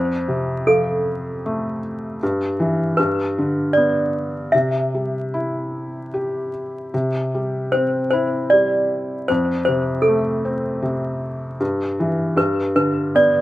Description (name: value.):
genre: children's music, lullaby.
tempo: 77 BPM.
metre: 3/4.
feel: rubato.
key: C major.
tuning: A4 = 440 Hz.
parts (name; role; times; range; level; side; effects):
toy piano; melody; 0.0-13.4 s; A4 to E5; -19 LUFS; equal; slapback echo.
felt-muted upright piano; accompaniment; 0.0-13.4 s; F2 to G4; -21 LUFS; equal; none.
room: little or no reverb.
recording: recorded outdoors, with no room sound, vinyl crackle.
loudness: -18 LUFS.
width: side -16 dB against mid.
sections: 0.0-6.9 A section; 6.9-13.4 A section.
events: none.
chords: 0.0 F; 2.2 Em/G; 3.0 G; 4.5 C; 9.3 F; 11.6 Em/G; 12.4 G.